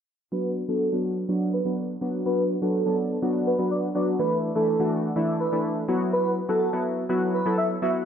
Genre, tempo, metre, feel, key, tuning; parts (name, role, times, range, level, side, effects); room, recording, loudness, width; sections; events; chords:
pop; 124 BPM; 4/4; straight; B minor; A4 = 440 Hz
airy dreamy lead; melody; 0.3-7.9 s; A4 to E5; -27 LUFS; right 1 dB; chorus, low-pass filter, dub echo
chorused retro synth keys; accompaniment; 0.3-8.0 s; E3 to A4; -24 LUFS; equal; low-pass filter
moderate plate reverb, RT60 3.0 s; dark, warm production; -23 LUFS; side -8 dB against mid
0.3-8.1 A section
filter sweep 0.3-8.1
0.3 Bm; 4.2 Asus4; 5.9 Esus2